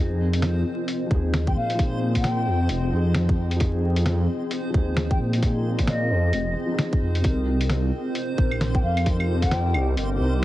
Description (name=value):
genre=future garage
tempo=132 BPM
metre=4/4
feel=swing 60% on 16ths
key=unclear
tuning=A4 = 435 Hz
part: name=felt-muted upright piano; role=accompaniment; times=0.0-10.4 s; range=C3 to Bb4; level=-31 LUFS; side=equal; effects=sidechain pumping, tape echo
part: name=granular cloud pad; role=sustained chords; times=0.0-10.4 s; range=C4 to Eb5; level=-31 LUFS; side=left 1 dB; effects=built-in reverb, vintage 12-bit sampler grit, sidechain pumping
part: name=swelling detuned saw bass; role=bass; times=0.0-10.4 s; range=F1 to Bb2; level=-23 LUFS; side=equal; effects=sidechain pumping
part: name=backwards swelling texture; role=texture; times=0.1-10.4 s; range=C5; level=-39 LUFS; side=right 2 dB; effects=built-in reverb
part: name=lo-fi sampler-style drum kit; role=drums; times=0.3-10.1 s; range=claves, hi-hat, snare drum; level=-28 LUFS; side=equal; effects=none
part: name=electronic kick drum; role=drums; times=1.1-9.5 s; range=none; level=-22 LUFS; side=equal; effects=none
part: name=baroque flute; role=melody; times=1.5-9.9 s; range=Eb5 to G5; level=-30 LUFS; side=left 2 dB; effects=vintage 12-bit sampler grit, tape echo
room=light reverb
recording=heavily compressed radio sound, vinyl crackle, nothing above 10.6 kHz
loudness=-21 LUFS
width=side -15 dB against mid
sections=0.0-10.4 A section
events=none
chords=0.0 Fm7; 7.2 Cm7